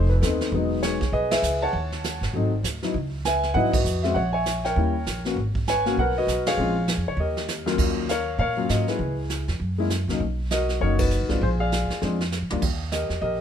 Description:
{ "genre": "jazz piano trio", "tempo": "198 BPM", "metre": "4/4", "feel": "swing 61% on 8ths", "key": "G# minor, Eb minor from 7.8 s", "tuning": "A4 = 441 Hz", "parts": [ { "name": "warm concert grand piano", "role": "melody", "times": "0.0-13.4 s", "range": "D#2 to A5", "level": "-24 LUFS", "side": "left 2 dB", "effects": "none" }, { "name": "upright bass", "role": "bass", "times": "0.0-13.4 s", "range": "E1 to Bb2", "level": "-26 LUFS", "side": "right 1 dB", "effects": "none" }, { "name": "vintage brush drum kit", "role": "drums", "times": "0.2-13.4 s", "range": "brushed snare drum, crash cymbal, hi-hat, kick drum, ride cymbal, snare drum, toms", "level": "-29 LUFS", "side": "right 3 dB", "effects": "none" } ], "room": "moderate studio reverb, RT60 0.9 s", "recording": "minimal, uncompressed stereo recording", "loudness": "-22 LUFS", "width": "side -8 dB against mid", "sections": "0.0-7.8 A section; 7.8-13.4 B section", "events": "band accent 1.3, 3.7, 6.4, 11.0; drum fill 7.2-7.8, 12.0-12.6", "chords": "0.0 F7#11; 0.5 Emaj7; 1.7 D#m7b5; 2.3 G#7b9; 2.9 C#m11; 4.2 A#m7b5; 4.8 D#7b9; 5.4 G#m11; 6.6 A#m7; 7.2 D#; 7.8 Ebm9; 9.0 Dbm; 9.6 Gb; 10.2 Bmaj9; 11.4 Bb7; 12.6 Eb" }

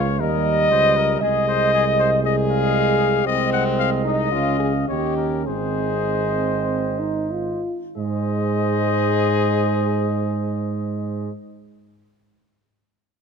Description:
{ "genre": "classical, brass quintet", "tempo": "92-118 BPM", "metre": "4/4", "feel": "rubato", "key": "Ab major", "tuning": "A4 = 440 Hz", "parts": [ { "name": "warm trumpet", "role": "melody", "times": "0.0-11.3 s", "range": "Ab4 to Gb5", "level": "-26 LUFS", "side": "left 12 dB", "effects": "none" }, { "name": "mellow flugelhorn", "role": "second line", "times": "0.0-11.3 s", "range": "C5 to F5", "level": "-28 LUFS", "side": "right 11 dB", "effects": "none" }, { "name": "clear French horn", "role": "accompaniment", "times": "0.0-11.3 s", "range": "C4 to Eb5", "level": "-22 LUFS", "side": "left 4 dB", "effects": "none" }, { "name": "clear euphonium", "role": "accompaniment", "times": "0.0-11.3 s", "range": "G3 to F4", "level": "-27 LUFS", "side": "right 4 dB", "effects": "none" }, { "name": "mellow tuba", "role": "bass", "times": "0.0-11.3 s", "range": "Ab1 to Ab2", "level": "-24 LUFS", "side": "right 4 dB", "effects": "none" } ], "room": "moderate scoring stage reverb, RT60 1.7 s", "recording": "close, detailed microphones", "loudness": "-18 LUFS", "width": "side -6 dB against mid", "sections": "0.0-8.0 A section; 8.0-13.1 B section", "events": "slowing down 2.2-8.0", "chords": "0.2 Eb; 1.2 Ab/C; 4.3 Db; 4.9 Eb7; 5.5 Ab" }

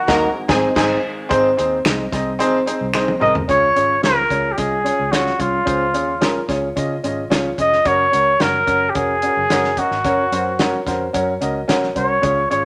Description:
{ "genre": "uptempo 1960s-style soul", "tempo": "110 BPM", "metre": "4/4", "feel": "straight", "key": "Db major", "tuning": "A4 = 440 Hz", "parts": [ { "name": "breathy trumpet", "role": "melody", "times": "0.0-12.6 s", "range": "F4 to Eb5", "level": "-19 LUFS", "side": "equal", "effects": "none" }, { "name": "percussive tonewheel organ", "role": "sustained chords", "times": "0.0-1.3 s", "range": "Eb3 to Ab4", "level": "-35 LUFS", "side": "equal", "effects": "none" }, { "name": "rich studio violin section", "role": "second line", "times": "0.1-0.9 s", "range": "Ab4 to Bb5", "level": "-27 LUFS", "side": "equal", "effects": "none" }, { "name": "clear grand piano", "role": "accompaniment", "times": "0.1-12.7 s", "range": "Bb3 to Eb5", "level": "-22 LUFS", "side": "equal", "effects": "none" }, { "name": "electric guitar through a small old amp", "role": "stabs", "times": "0.1-3.1 s", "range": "Eb4 to Eb5", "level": "-28 LUFS", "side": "equal", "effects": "none" }, { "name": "vintage muted fingered electric bass", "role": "bass", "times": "0.1-12.7 s", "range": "F1 to Db3", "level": "-31 LUFS", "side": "equal", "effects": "none" }, { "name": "warm soul drum kit", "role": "drums", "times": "0.1-12.6 s", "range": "crash cymbal, hi-hat, kick drum, snare drum, toms", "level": "-25 LUFS", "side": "equal", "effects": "none" }, { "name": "finger snap", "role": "percussion", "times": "1.8-3.1 s", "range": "none", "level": "-26 LUFS", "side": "equal", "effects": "none" } ], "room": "wet studio reverb, RT60 1.0 s", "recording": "none", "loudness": "-18 LUFS", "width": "mono", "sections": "0.0-1.3 A section; 1.3-3.5 B section; 3.5-12.7 C section", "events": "band accent 0.0-1.3; drum fill 2.9-3.5", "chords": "0.2 Ab; 3.5 Db; 7.9 Gb" }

